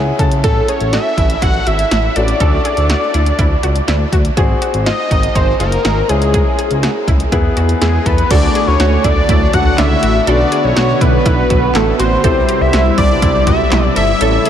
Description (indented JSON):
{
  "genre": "synth-pop",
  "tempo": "122 BPM",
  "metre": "4/4",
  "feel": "straight",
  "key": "unclear",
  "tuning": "A4 = 440 Hz",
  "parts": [
    { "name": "warm concert grand piano", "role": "accompaniment", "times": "0.0-14.5 s", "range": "A3 to A5", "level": "-21 LUFS", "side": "left 3 dB", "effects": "none" },
    { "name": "analog pluck", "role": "arpeggios", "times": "0.0-14.5 s", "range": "D4 to A4", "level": "-23 LUFS", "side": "right 2 dB", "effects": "chorus, diffuse ambient delay" },
    { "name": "smooth synth bass", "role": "bass", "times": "0.0-14.4 s", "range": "F#1 to E2", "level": "-16 LUFS", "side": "equal", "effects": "none" },
    { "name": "punchy analog drum machine", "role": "drums", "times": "0.2-14.5 s", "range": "crash cymbal, handclaps, hi-hat, kick drum, snare drum", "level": "-17 LUFS", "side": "equal", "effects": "none" },
    { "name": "fat analog lead", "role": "melody", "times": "0.4-14.5 s", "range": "G#4 to F#5", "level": "-16 LUFS", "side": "equal", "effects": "phaser, diffuse ambient delay" },
    { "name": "warm analog pad", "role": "sustained chords", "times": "8.3-14.5 s", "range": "C3 to F#4", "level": "-19 LUFS", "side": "equal", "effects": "chorus" }
  ],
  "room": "moderate huge ambient reverb, RT60 8.5 s",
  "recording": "dreamy mix soaked in reverb",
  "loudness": "-11 LUFS",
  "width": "side -9 dB against mid",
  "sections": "0.0-8.3 A section; 8.3-14.5 B section",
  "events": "grand piano fill 0.0-0.4",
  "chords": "0.4 A; 2.4 D; 4.4 G#7; 6.1 C#m; 7.3 E; 8.3 D; 10.3 Bm; 12.2 C"
}